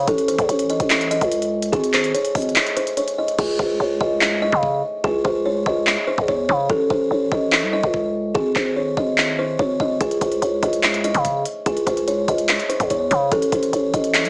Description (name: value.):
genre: hip hop, trap.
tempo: 145 BPM.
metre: 4/4.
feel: half-time.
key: unclear.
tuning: A4 = 440 Hz.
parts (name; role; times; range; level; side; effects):
buzzing kalimba; melody; 0.0-14.3 s; G#4 to E5; -20 LUFS; equal; digital delay.
growling 808-style bass; bass; 0.0-14.3 s; G#1 to C#3; -22 LUFS; equal; none.
trap drum kit; drums; 0.1-14.3 s; crash cymbal, handclaps, hi-hat, kick drum; -22 LUFS; equal; none.
room: moderate digital room reverb, RT60 1.1 s, digital ambience.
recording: small speaker sound.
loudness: -17 LUFS.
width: side -30 dB against mid.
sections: 0.0-3.4 A section; 3.4-14.3 B section.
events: kick muted 2.6-3.4; hi-hats muted 3.4-10.0.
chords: 0.1 A; 1.7 N.C.; 6.7 A; 8.4 N.C..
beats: | 0.07 0.49 0.90 1.32 | 1.73 2.14 2.56 2.97 | 3.38 3.80 4.21 4.63 | 5.04 5.45 5.87 6.28 | 6.70 7.11 7.52 7.94 | 8.35 8.77 9.18 9.59 | 10.01 10.42 10.83 11.25 | 11.66 12.07 12.49 12.90 | 13.32 13.73 14.14.